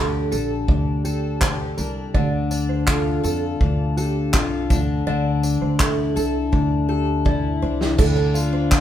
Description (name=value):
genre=acoustic pop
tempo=82 BPM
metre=4/4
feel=straight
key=D minor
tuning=A4 = 437 Hz
part: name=picked twelve-string acoustic guitar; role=accompaniment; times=0.0-8.8 s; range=D3 to A4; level=-24 LUFS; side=left 5 dB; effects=none
part: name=mellow electric guitar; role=arpeggios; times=0.0-8.7 s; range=G4 to D5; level=-28 LUFS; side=right 9 dB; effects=tremolo
part: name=upright bass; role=bass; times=0.0-8.8 s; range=Bb1 to F2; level=-23 LUFS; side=equal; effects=none
part: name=natural country drum kit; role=drums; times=0.3-8.8 s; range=crash cymbal, handclaps, kick drum, snare drum, tambourine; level=-22 LUFS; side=equal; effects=none
room=light reverb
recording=band playing live in one room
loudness=-18 LUFS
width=side -11 dB against mid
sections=0.0-8.0 A section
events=drum fill 6.5-8.0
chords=0.0 Gmadd9; 2.1 Dm; 4.7 Asus4; 8.0 Dm